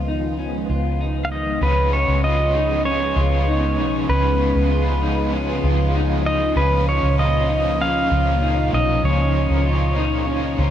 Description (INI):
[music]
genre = dream pop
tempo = 97 BPM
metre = 4/4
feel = straight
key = unclear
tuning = A4 = 440 Hz
[part]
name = phased string machine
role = sustained chords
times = 0.0-10.7 s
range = Bb2 to F4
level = -26 LUFS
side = right 1 dB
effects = ensemble chorus, phaser
[part]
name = electric guitar at the edge of break-up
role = arpeggios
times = 0.0-10.7 s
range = Db4 to F4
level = -26 LUFS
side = left 3 dB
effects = wide subtle chorus, digital delay
[part]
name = vintage muted fingered electric bass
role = bass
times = 0.0-10.7 s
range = Cb2 to Db2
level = -20 LUFS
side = equal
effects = none
[part]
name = pedal steel guitar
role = melody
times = 1.2-10.7 s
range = Cb5 to F5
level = -22 LUFS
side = equal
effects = digital delay
[part]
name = overdriven electric guitar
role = accompaniment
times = 1.6-10.7 s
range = Db3 to F4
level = -28 LUFS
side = right 2 dB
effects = tremolo, wide subtle chorus
[sound]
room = moderate huge ambient reverb, RT60 6.8 s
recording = none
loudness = -17 LUFS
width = side -10 dB against mid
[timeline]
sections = 0.0-1.6 A section; 1.6-10.7 B section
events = none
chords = 0.0 Dbadd9; 6.6 Bbm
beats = 0.38 1.00 | 1.62 2.23 2.85 3.47 | 4.09 4.71 5.33 5.95 | 6.57 7.18 7.80 8.42 | 9.04 9.66 10.28